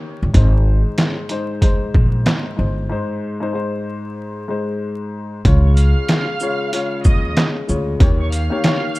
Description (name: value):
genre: hip hop, boom-bap hip-hop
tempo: 94 BPM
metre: 4/4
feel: swing 59% on 16ths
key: Ab major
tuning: A4 = 442 Hz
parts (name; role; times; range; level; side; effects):
- dark baby grand piano; accompaniment; 0.0-9.0 s; Ab2 to Db5; -23 LUFS; left 2 dB; cassette tape, high-pass filter, low-pass filter
- upright bass; bass; 0.2-8.5 s; G1 to Eb2; -16 LUFS; equal; none
- trip hop sampler-style drum kit; drums; 0.3-9.0 s; handclaps, hi-hat, kick drum, shaker, snare drum; -16 LUFS; equal; overdrive
- warm studio violin section; melody; 5.6-9.0 s; Db5 to F6; -26 LUFS; right 3 dB; high-pass filter, low-pass filter
room: little or no reverb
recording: dark, warm production, vinyl crackle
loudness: -15 LUFS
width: side -20 dB against mid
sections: 0.0-5.5 A section; 5.5-9.0 B section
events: break 2.9-5.5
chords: 0.3 Ab; 5.5 Db; 8.0 Eb7